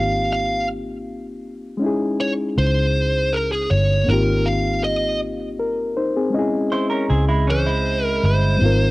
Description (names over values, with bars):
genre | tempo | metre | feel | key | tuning
R&B | 53 BPM (dotted quarters) | 6/8 | straight | unclear | A4 = 438 Hz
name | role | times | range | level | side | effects
fuzz lead guitar | melody | 0.0-8.9 s | Ab4 to F5 | -22 LUFS | right 1 dB | distortion, cassette tape
reed electric piano | accompaniment | 0.0-8.9 s | G3 to Eb5 | -22 LUFS | left 2 dB | cassette tape
vintage muted fingered electric bass | bass | 0.0-8.9 s | G1 to Db2 | -20 LUFS | equal | none
clean electric guitar | second line | 6.7-8.6 s | Fb3 to C5 | -24 LUFS | right 3 dB | spring reverb, cassette tape
room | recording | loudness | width
moderate booth ambience, RT60 0.2 s | home recording on cassette | -17 LUFS | side -20 dB against mid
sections
0.0-8.6 A section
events
lead electric guitar solo 0.0-8.6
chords
0.0 Abmaj13; 1.8 Dbmadd9; 4.1 Abmaj13; 6.3 Dbmadd9